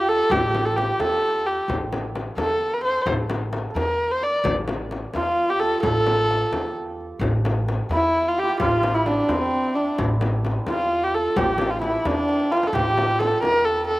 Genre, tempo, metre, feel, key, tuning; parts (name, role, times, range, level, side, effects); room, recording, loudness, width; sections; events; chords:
Persian modal ensemble; 87 BPM (dotted quarters); 6/8; straight; A dastgah shur; A4 = 439 Hz
warm kamancheh; melody; 0.0-14.0 s; C4 to D5; -21 LUFS; equal; slapback echo
santur; second line; 0.0-14.0 s; C4 to D5; -28 LUFS; right 3 dB; slapback echo
upright bass; bass; 0.0-14.0 s; A1 to E2; -28 LUFS; equal
tombak; percussion; 0.1-14.0 s; -33 LUFS; left 2 dB; slapback echo
frame drum; percussion; 0.3-13.5 s; -28 LUFS; left 2 dB; slapback echo
little or no reverb; recorded outdoors, with no room sound; -20 LUFS; side -18 dB against mid
0.0-7.2 A section; 7.2-14.0 A section
drum fill 12.3-12.7